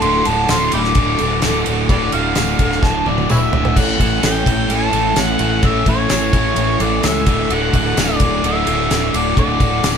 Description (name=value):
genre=classic rock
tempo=128 BPM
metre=4/4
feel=straight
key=D major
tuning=A4 = 440 Hz
part: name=overdriven harmonica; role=melody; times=0.0-10.0 s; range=G4 to D6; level=-20 LUFS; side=left 1 dB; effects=none
part: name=picked old ladder-braced acoustic guitar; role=accompaniment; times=0.0-10.0 s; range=A2 to A4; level=-27 LUFS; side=left 2 dB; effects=none
part: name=tonewheel organ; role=sustained chords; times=0.0-10.0 s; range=C#4 to Bb4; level=-31 LUFS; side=equal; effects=none
part: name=biting overdriven guitar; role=riff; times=0.0-10.0 s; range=D2 to A3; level=-21 LUFS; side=right 6 dB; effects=none
part: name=sludgy distorted guitar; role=riff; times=0.0-10.0 s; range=D2 to A3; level=-23 LUFS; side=left 6 dB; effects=overdrive
part: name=fuzz fingered electric bass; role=bass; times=0.0-10.0 s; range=D1 to C#2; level=-22 LUFS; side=equal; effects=overdrive
part: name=damped 70s drum kit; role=drums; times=0.0-9.9 s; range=crash cymbal, kick drum, ride cymbal, snare drum, toms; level=-18 LUFS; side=equal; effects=none
part: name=tambourine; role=percussion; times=0.5-9.9 s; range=none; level=-30 LUFS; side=left 6 dB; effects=none
room=moderate studio reverb, RT60 0.5 s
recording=band playing live in one room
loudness=-13 LUFS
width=side -7 dB against mid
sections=0.0-3.8 A section; 3.8-10.0 B section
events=harmonica solo 0.0-3.8; drum fill 2.8-3.8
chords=0.0 D; 3.8 A; 7.3 D